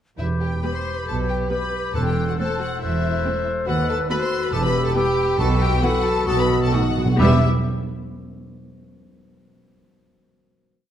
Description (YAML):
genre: quick classical-period movement for symphony orchestra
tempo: 137 BPM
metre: 4/4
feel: uneven beats, rubato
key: E minor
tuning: A4 = 442 Hz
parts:
  - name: rich studio violin section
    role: melody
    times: 0.2-7.4 s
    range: E5 to C6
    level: -29 LUFS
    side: left 4 dB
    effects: none
  - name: clear clarinet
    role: second line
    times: 0.2-7.4 s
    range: F#4 to A4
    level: -30 LUFS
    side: left 2 dB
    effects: none
  - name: clear studio violin section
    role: second line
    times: 0.2-7.4 s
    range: E4 to C5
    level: -30 LUFS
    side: left 2 dB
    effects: none
  - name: mellow hollow concert flute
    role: second line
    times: 0.2-7.5 s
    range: D#6 to G6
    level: -32 LUFS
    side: left 3 dB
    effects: none
  - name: warm oboe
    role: second line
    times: 0.2-7.4 s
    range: A4 to C5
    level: -32 LUFS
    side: right 2 dB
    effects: none
  - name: rich studio cello section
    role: bass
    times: 0.2-7.4 s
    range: D#2 to B2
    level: -27 LUFS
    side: right 3 dB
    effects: none
  - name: rich studio double bass section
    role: bass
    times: 0.2-7.4 s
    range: E1 to D#2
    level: -25 LUFS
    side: right 2 dB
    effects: none
  - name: timpani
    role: percussion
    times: 0.2-2.6, 5.4-7.4 s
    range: E2 to B2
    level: -25 LUFS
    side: right 1 dB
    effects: none
  - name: rich studio viola section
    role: accompaniment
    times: 0.6-7.4 s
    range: D#3 to C4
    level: -26 LUFS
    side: right 1 dB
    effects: none
  - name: mellow French horn section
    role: sustained chords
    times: 1.1-7.4 s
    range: B3 to C5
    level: -26 LUFS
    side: left 3 dB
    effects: none
room: wet scoring stage reverb, RT60 1.4 s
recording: dark, warm production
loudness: -18 LUFS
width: side -10 dB against mid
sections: 0.2-7.2 A section; 7.2-9.0 final chord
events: timpani fill 6.3-7.2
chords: 0.2 Em; 1.9 F#m7b5/E; 3.7 B7/D#; 4.5 Em; 5.4 B7sus4; 6.3 B7; 7.2 Em